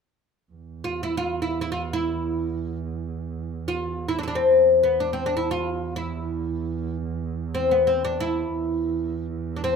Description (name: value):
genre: Arabic maqam ensemble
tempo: free time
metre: none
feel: none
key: E maqam hijaz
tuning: A4 = 440 Hz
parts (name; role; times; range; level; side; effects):
- warm double bass; drone; 0.5-9.8 s; E2; -31 LUFS; right 6 dB; none
- oud; melody; 0.8-9.8 s; B3 to F4+25c; -22 LUFS; left 2 dB; plate reverb
room: moderate studio reverb, RT60 0.6 s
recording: none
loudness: -22 LUFS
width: side -6 dB against mid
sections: 0.5-9.8 A section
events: none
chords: none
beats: free time